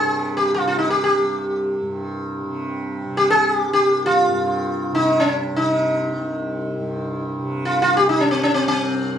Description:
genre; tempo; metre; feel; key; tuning
indian classical, Hindustani; free time; none; none; C raga bhairavi; A4 = 440 Hz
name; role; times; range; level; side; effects
sitar; melody; 0.0-9.2 s; C4 to Ab4; -18 LUFS; equal; none
tanpura; drone; 0.0-9.2 s; C2 to C3; -26 LUFS; right 2 dB; none
room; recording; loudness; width
moderate studio reverb, RT60 0.6 s; studio reverb; -18 LUFS; side -9 dB against mid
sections
0.0-9.2 A section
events
none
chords
none

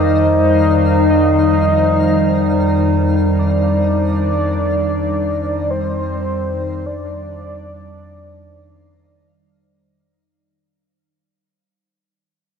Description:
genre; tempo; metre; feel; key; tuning
ambient; free time; none; none; unclear; A4 = 439 Hz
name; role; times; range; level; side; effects
warm velvety synth lead; melody; 0.0-9.2 s; C5 to Eb5; -20 LUFS; equal; chorus, tremolo, ping-pong delay
warbly tape-like pad; sustained chords; 0.0-10.3 s; Eb3 to C5; -17 LUFS; left 1 dB; chorus, built-in reverb
deep rumbling drone; bass; 0.0-10.3 s; F2; -20 LUFS; equal; built-in reverb
twinkling granular texture; texture; 0.0-10.3 s; Eb4 to F5; -30 LUFS; left 2 dB; built-in reverb
room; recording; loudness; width
wet cathedral reverb, RT60 4.9 s; worn, warbling old tape, cassette tape, warbly pitch drift; -13 LUFS; side -7 dB against mid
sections
0.0-10.3 A section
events
fade-out on synth texture 0.0-10.3; fade-out 1.1-10.3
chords
0.0 Cmadd9

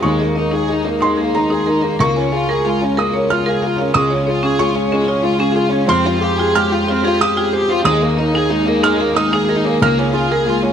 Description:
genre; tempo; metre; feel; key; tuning
neoclassical piano and strings; 92 BPM; 3/4; rubato; unclear; A4 = 439 Hz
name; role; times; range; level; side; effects
warm chamber violin section; melody; 0.0-10.7 s; Ab3 to Ab4; -18 LUFS; equal; slapback echo
felt-muted upright piano; accompaniment; 0.0-10.7 s; Db2 to F6; -17 LUFS; equal; none
warm studio string section; sustained chords; 0.0-10.7 s; Db3 to Bb4; -25 LUFS; left 1 dB; none
buzzing marimba with hard mallets; arpeggios; 0.0-10.7 s; Db4 to Ab5; -23 LUFS; left 1 dB; slapback echo
room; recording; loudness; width
little or no reverb; close, detailed microphones; -14 LUFS; side -8 dB against mid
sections
0.0-10.7 A section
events
none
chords
0.0 Ebsus4; 2.0 Bbm7/Db; 3.9 Db; 5.9 Fmadd9; 7.9 Ebsus4; 9.8 Bbm7/Db

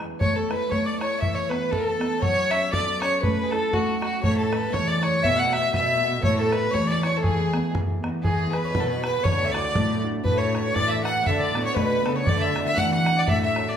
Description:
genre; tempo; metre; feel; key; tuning
celtic folk, Celtic polka; 120 BPM; 2/4; swing 58% on 8ths; unclear; A4 = 440 Hz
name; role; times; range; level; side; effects
Celtic harp; accompaniment; 0.0-13.8 s; E2 to C#5; -28 LUFS; right 1 dB; none
bodhran; percussion; 0.0-13.7 s; none; -28 LUFS; equal; none
rich fiddle; melody; 0.2-13.8 s; F#4 to F#5; -25 LUFS; right 1 dB; none
rich fiddle; second line; 0.2-13.8 s; F#4 to F#5; -29 LUFS; left 4 dB; none
dark cello; bass; 4.2-13.7 s; D2 to E3; -28 LUFS; equal; none
room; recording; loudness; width
wet large studio reverb, RT60 1.2 s; band playing live in one room; -21 LUFS; side -8 dB against mid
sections
0.2-8.2 A section; 8.2-13.8 B section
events
none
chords
0.2 A5; 1.2 Esus4; 2.2 F#m; 3.2 A5; 5.2 Esus2/B; 6.2 A5; 8.2 E; 9.2 Dadd9; 10.2 Asus2; 11.3 D6; 12.3 Dadd9

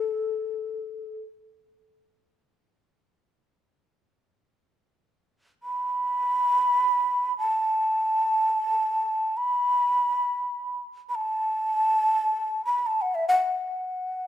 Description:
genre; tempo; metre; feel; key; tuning
japanese traditional, Japanese chamber music; free time; none; none; unclear; A4 = 439 Hz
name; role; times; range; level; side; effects
breathy mellow shakuhachi; solo; 0.0-14.3 s; A4 to B5; -23 LUFS; equal; none
room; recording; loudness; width
moderate recital hall reverb, RT60 1.6 s; minimal, uncompressed stereo recording; -23 LUFS; side -12 dB against mid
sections
0.0-4.3 A section; 4.3-14.3 A section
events
none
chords
none

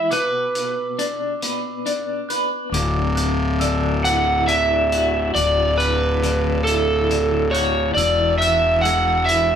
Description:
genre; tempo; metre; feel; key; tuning
post-rock; 46 BPM (dotted quarters); 6/8; straight; D lydian; A4 = 441 Hz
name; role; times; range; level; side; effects
overdriven slide guitar; melody; 0.0-9.6 s; A4 to F#5; -18 LUFS; right 2 dB; none
twelve-string electric guitar; arpeggios; 0.0-9.6 s; D2 to B4; -25 LUFS; left 3 dB; tremolo
glockenspiel with rubber mallets; arpeggios; 0.1-9.6 s; D6 to F#6; -29 LUFS; right 3 dB; none
hi-hat; drums; 0.1-9.5 s; none; -30 LUFS; left 1 dB; none
fuzz fingered electric bass; bass; 2.7-9.6 s; D1 to E1; -22 LUFS; left 1 dB; overdrive
room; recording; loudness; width
moderate studio ambience, RT60 0.5 s; band playing live in one room; -17 LUFS; side -8 dB against mid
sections
0.0-9.6 A section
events
none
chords
0.1 Bm; 2.7 D; 8.0 E

